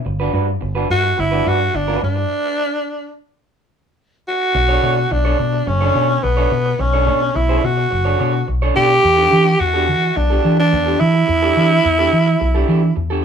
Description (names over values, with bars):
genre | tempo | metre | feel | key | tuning
disco | 107 BPM | 4/4 | straight | B minor | A4 = 439 Hz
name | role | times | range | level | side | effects
electric guitar through a small old amp | accompaniment | 0.0-13.2 s | D4 to D5 | -22 LUFS | right 3 dB | none
fingered electric bass | bass | 0.1-13.2 s | F#1 to E3 | -18 LUFS | equal | none
growling tenor saxophone | melody | 0.9-13.0 s | B3 to G4 | -16 LUFS | right 1 dB | none
room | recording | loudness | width
moderate studio reverb, RT60 0.5 s | band playing live in one room | -14 LUFS | side -7 dB against mid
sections
0.0-4.5 A section; 4.5-13.2 B section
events
stop 2.3-4.5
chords
0.1 Gmaj7; 4.5 Bm9; 9.0 Em11